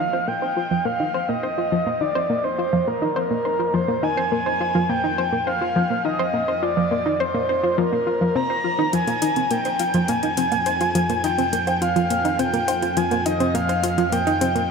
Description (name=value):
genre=ambient, sequencer-driven space music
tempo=104 BPM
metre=4/4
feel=straight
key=F dorian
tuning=A4 = 445 Hz
part: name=breathy flute-like synth lead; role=melody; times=0.0-14.7 s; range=Bb4 to Bb5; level=-22 LUFS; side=equal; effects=wide subtle chorus, ping-pong delay
part: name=analog pluck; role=riff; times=0.0-14.6 s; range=F3 to C5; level=-23 LUFS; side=equal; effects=chorus, ping-pong delay
part: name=analog drone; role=bass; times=1.5-14.7 s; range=F2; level=-32 LUFS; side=equal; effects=chorus
part: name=electronic hi-hat and woodblock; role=percussion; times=8.9-14.7 s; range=none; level=-32 LUFS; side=left 3 dB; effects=none
room=wet huge ambient reverb, RT60 7.8 s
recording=none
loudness=-19 LUFS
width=side -5 dB against mid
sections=0.0-14.7 A section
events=fade-in on synth drone 0.0-14.7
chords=0.0 Fsus2